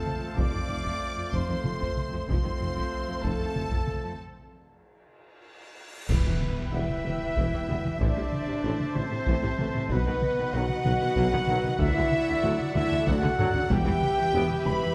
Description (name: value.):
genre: cinematic, epic orchestral film score.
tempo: 63 BPM (dotted quarters).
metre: 6/8.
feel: straight.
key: E minor from 6.1 s.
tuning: A4 = 440 Hz.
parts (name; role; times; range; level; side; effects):
warm symphonic violin section; melody; 0.0-14.9 s; B4 to D6; -42 LUFS; equal; none.
warm symphonic violin section; second line; 0.0-14.9 s; A4 to A5; -44 LUFS; equal; none.
warm symphonic viola section; accompaniment; 0.0-14.9 s; C3 to C5; -40 LUFS; equal; none.
dark woodwind section; sustained chords; 0.0-14.9 s; D4 to F#5; -43 LUFS; equal; none.
mellow French horn section; sustained chords; 0.0-14.9 s; B3 to B4; -35 LUFS; equal; none.
warm trombone section; sustained chords; 0.0-14.5 s; D3 to B3; -41 LUFS; equal; none.
mellow trumpet section; stabs; 0.0-14.9 s; A4 to B5; -35 LUFS; equal; none.
taiko ensemble; drums; 0.1-14.9 s; none; -34 LUFS; equal; none.
warm symphonic cello section; bass; 0.2-14.9 s; D2 to B2; -37 LUFS; equal; none.
mellow tuba; bass; 0.4-14.7 s; E1 to D2; -37 LUFS; equal; none.
rich chamber double bass section; bass; 0.4-14.7 s; E1 to D2; -36 LUFS; equal; none.
cymbal swell, clash cymbals and concert bass drum; percussion; 2.3-7.3 s; none; -38 LUFS; equal; none.
cymbal swell and impact; sound effects; 5.4-8.0 s; none; -43 LUFS; equal; none.
mellow hollow silver concert flute; second line; 6.1-14.9 s; B4 to B5; -40 LUFS; equal; none.
timpani; percussion; 6.1-7.0 s; E2; -39 LUFS; equal; none.
room: moderate scoring stage reverb, RT60 1.7 s.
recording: dark, warm production.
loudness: -27 LUFS.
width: mono.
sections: 0.0-6.1 A section; 6.1-14.9 B section.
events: break 4.2-6.1; cymbal swell 5.4-6.1; drum fill 5.6-6.1, 13.2-13.7; band accent 6.1-6.7; impact 6.1-8.0.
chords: 0.0 F; 4.2 N.C.; 6.1 Em; 8.0 Am; 9.9 B; 11.8 D; 13.7 Em.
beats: | 0.38 1.34 | 2.29 3.24 | 4.19 5.14 | 6.10 7.05 | 8.00 8.96 | 9.91 10.86 | 11.81 12.76 | 13.72 14.67.